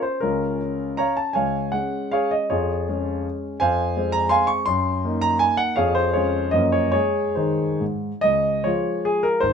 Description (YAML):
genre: classical, romantic triple-time dance for piano with dotted rhythms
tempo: 131-175 BPM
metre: 3/4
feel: rubato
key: Db major from 3.6 s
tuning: A4 = 439 Hz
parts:
  - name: warm grand piano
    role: solo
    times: 0.0-9.5 s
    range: Ab1 to Db6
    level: -19 LUFS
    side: equal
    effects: none
room: light reverb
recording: minimal, uncompressed stereo recording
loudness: -19 LUFS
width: side -6 dB against mid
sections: 0.0-8.2 A section; 8.2-9.5 B section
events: none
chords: 0.2 Bbm/Db; 1.3 Db; 2.5 Db/F; 3.6 Fm; 4.7 Ebm/Gb; 5.8 Db/F; 6.5 Gbmaj7; 6.9 Ab; 8.2 Db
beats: | 0.21 0.60 0.98 | 1.34 1.73 2.13 | 2.51 2.88 3.25 | 3.60 3.96 4.32 | 4.67 5.04 5.42 | 5.77 6.14 6.53 | 6.93 7.37 7.81 | 8.23 8.66 9.06 | 9.43